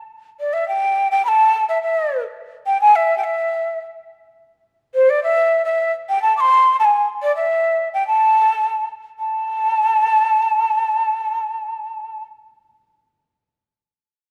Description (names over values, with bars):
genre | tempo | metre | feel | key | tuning
andean folk | 106 BPM | 2/4 | straight | A minor | A4 = 440 Hz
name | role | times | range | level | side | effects
breathy mellow quena | solo | 0.4-12.2 s | C5 to D6 | -18 LUFS | equal | none
room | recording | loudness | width
moderate recital hall reverb, RT60 1.6 s | none | -18 LUFS | mono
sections
0.1-9.2 A section; 9.2-11.5 B section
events
none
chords
none